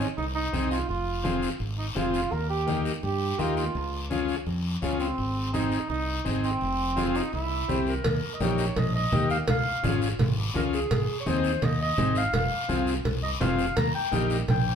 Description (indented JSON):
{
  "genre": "latin, cumbia",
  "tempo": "168 BPM",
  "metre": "4/4",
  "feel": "straight",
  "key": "unclear",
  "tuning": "A4 = 442 Hz",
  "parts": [
    { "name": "dark cor anglais", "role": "second line", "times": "0.0-7.8 s", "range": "C4 to Bb4", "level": "-30 LUFS", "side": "right 3 dB", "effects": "none" },
    { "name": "combo organ", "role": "accompaniment", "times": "0.0-14.4 s", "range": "Bb3 to Ab4", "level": "-30 LUFS", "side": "left 2 dB", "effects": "none" },
    { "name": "modern bright fingered electric bass", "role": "bass", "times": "0.0-14.8 s", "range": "F1 to G2", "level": "-30 LUFS", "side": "equal", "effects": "none" },
    { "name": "guiro", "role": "percussion", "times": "0.0-14.8 s", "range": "none", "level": "-38 LUFS", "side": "left 5 dB", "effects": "none" },
    { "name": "congas", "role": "percussion", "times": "0.2-14.7 s", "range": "none", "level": "-30 LUFS", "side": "right 1 dB", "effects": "none" },
    { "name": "mellow clarinet", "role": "melody", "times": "7.7-14.8 s", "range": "Ab4 to Bb5", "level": "-30 LUFS", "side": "left 1 dB", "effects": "none" },
    { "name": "cowbell and timbales", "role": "percussion", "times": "8.0-14.7 s", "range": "none", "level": "-32 LUFS", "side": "left 2 dB", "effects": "none" }
  ],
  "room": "wet studio reverb, RT60 0.7 s",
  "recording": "band playing live in one room",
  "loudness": "-24 LUFS",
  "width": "side -7 dB against mid",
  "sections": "0.0-8.0 A section; 8.0-14.8 B section",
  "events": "cor anglais solo 0.0-8.0",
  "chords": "0.0 Ab; 0.9 Fm; 2.3 Eb; 3.8 Db; 5.2 Ab; 6.6 Fm; 7.3 C; 8.0 Eb; 9.5 Db; 10.9 Ab; 12.3 Fm; 13.8 Eb",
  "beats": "0.18 0.54 | 0.89 1.25 1.61 1.96 | 2.32 2.68 3.04 3.39 | 3.75 4.11 4.47 4.83 | 5.18 5.54 5.90 6.26 | 6.62 6.97 7.33 7.69 | 8.05 8.40 8.76 9.12 | 9.48 9.84 10.19 10.55 | 10.91 11.27 11.62 11.98 | 12.34 12.70 13.05 13.41 | 13.77 14.13 14.48"
}